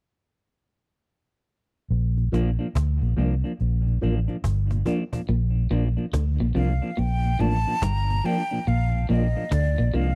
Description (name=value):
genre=roots reggae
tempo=71 BPM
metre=4/4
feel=swing 63% on 16ths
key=Bb major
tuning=A4 = 439 Hz
part: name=vintage muted fingered electric bass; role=bass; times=1.9-10.2 s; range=G1 to D2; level=-25 LUFS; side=equal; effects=none
part: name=mellow tonewheel organ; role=accompaniment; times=2.2-10.1 s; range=Bb2 to D4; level=-34 LUFS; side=equal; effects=chorus vibrato, slow rotary speaker
part: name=cajon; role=drums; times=2.2-10.1 s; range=none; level=-33 LUFS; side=equal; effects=none
part: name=semi-hollow electric guitar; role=accompaniment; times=2.3-10.1 s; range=F3 to D4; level=-32 LUFS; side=equal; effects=tape echo
part: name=electric guitar at the edge of break-up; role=riff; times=5.3-10.1 s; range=G2 to D3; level=-33 LUFS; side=equal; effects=lush chorus
part: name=breathy jazz flute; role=melody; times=6.6-10.2 s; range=D5 to Bb5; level=-31 LUFS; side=equal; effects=tape echo
room=little or no reverb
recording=dry, close 1970s-style studio recording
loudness=-24 LUFS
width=mono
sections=0.0-1.9 A section; 1.9-5.3 B section; 5.3-10.2 C section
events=drum fill 4.4-5.3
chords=0.0 N.C.; 1.9 Bb